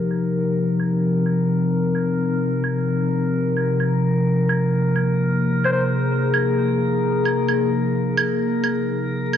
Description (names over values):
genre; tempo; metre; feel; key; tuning
future garage; 130 BPM; 4/4; swing 65% on 16ths; unclear; A4 = 440 Hz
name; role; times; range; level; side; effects
warbly tape-like pad; sustained chords; 0.0-9.4 s; C3 to Ab4; -19 LUFS; left 1 dB; chorus, built-in reverb
drifting glass-harmonics texture; texture; 0.0-9.4 s; Bb4; -27 LUFS; equal; chorus, built-in reverb
claves; drums; 0.1-9.4 s; none; -24 LUFS; right 6 dB; overdrive, small room ambience
bright alto saxophone; melody; 5.6-5.8 s; C5; -25 LUFS; left 1 dB; tape echo
room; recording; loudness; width
wet lush hall reverb, RT60 1.9 s, digital ambience; vinyl crackle, low-pass filter, nothing above 7.4 kHz; -18 LUFS; side -9 dB against mid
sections
0.0-9.4 A section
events
filter sweep on ambient pad 0.0-9.4; filter sweep 0.0-9.4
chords
0.0 Cm7; 3.9 Bb5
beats
| 0.19 0.65 1.11 1.57 | 2.03 2.49 2.96 3.42 | 3.88 4.34 4.80 5.26 | 5.72 6.19 6.65 7.11 | 7.57 8.03 8.49 8.96